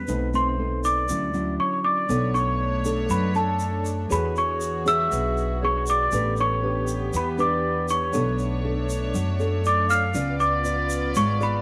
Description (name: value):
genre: bossa nova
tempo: 119 BPM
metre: 4/4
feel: straight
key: B minor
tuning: A4 = 441 Hz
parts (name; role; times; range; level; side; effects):
- worn celesta; melody; 0.0-11.6 s; A5 to E#6; -27 LUFS; equal; slapback echo
- reedy silver concert flute; second line; 0.0-11.6 s; A4 to E#5; -35 LUFS; equal; none
- nylon-string guitar; accompaniment; 0.0-11.6 s; B2 to D5; -30 LUFS; equal; none
- upright bass; bass; 0.0-11.6 s; G#1 to F#2; -30 LUFS; equal; none
- tube shaker; percussion; 0.1-11.6 s; none; -41 LUFS; equal; none
- warm studio string section; sustained chords; 2.1-11.6 s; A3 to D5; -35 LUFS; equal; none
room: moderate echo chamber reverb, RT60 1.3 s, small room ambience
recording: none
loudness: -24 LUFS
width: mono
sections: 0.0-2.1 A section; 2.1-11.6 B section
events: none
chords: 0.1 B7b9; 1.1 Dmaj9; 2.1 Bm9; 4.1 E13; 6.1 A9sus4; 8.1 Bm9; 10.1 C#7b9